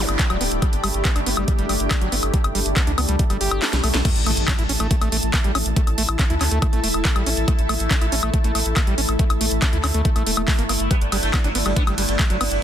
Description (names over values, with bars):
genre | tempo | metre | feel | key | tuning
psychedelic trance | 140 BPM | 4/4 | straight | unclear | A4 = 440 Hz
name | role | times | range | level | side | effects
bubbling stepped-filter texture | sustained chords | 0.0-12.6 s | A3 to E4 | -29 LUFS | left 1 dB | chorus, built-in reverb, sidechain pumping
overdriven acid bass | riff | 0.0-12.4 s | F#3 to G4 | -29 LUFS | right 1 dB | auto-pan, sidechain pumping, ping-pong delay
round analog bass | bass | 0.0-12.6 s | D1 to D2 | -24 LUFS | equal | none
zap and impact | sound effects | 0.0-0.1, 4.0-5.8 s | none | -30 LUFS | equal | none
granular cloud pad | texture | 0.0-12.6 s | D4 to A5 | -29 LUFS | left 1 dB | built-in reverb, sidechain pumping
drum and bass drum kit | drums | 0.1-12.6 s | crash cymbal, handclaps, hi-hat, ride cymbal, snare drum, woodblock | -24 LUFS | left 1 dB | overdrive
electronic kick drum | drums | 0.2-12.3 s | none | -19 LUFS | equal | overdrive
sitar | melody | 10.9-12.6 s | D3 to B3 | -26 LUFS | right 3 dB | phaser, vintage 12-bit sampler grit, sidechain pumping, ping-pong delay
room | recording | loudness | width
little or no reverb | dense, heavily limited modern master | -18 LUFS | side -10 dB against mid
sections
0.0-4.0 A section; 4.0-12.6 B section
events
kick drops out 3.6-4.0; drum fill 3.6-4.0; drop 4.0-12.6; impact 4.0-5.8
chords
0.0 G5; 4.0 A5; 10.9 G5